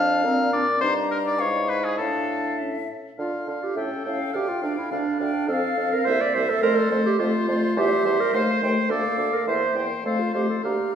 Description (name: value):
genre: quick classical-period movement for wind quintet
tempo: 104 BPM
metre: 2/4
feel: straight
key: D minor, F major from 7.8 s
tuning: A4 = 440 Hz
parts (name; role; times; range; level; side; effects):
- bright silver concert flute; melody; 0.0-10.9 s; C5 to Bb5; -31 LUFS; left 6 dB; none
- bright oboe; second line; 0.0-10.9 s; G#4 to G5; -27 LUFS; left 3 dB; none
- clear clarinet; accompaniment; 0.0-10.9 s; C4 to D5; -25 LUFS; right 5 dB; none
- mellow French horn; accompaniment; 0.0-10.9 s; G3 to Eb4; -30 LUFS; left 2 dB; none
- mellow bassoon; bass; 0.0-10.8 s; C2 to D3; -29 LUFS; right 1 dB; none
room: wet recital hall reverb, RT60 1.4 s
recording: heard from further back in the room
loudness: -21 LUFS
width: side -8 dB against mid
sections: 0.0-3.2 A section; 3.2-10.9 B section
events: none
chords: 0.2 Bb; 0.8 Eb/G; 1.4 E13b9/G#; 2.0 Dm/A; 2.6 A; 3.2 Dm; 3.8 A7; 4.3 Dm; 5.5 F; 6.1 C7; 6.6 F; 7.8 C/E; 8.3 F7/Eb; 8.9 Bb/D; 9.5 C7/E; 10.1 F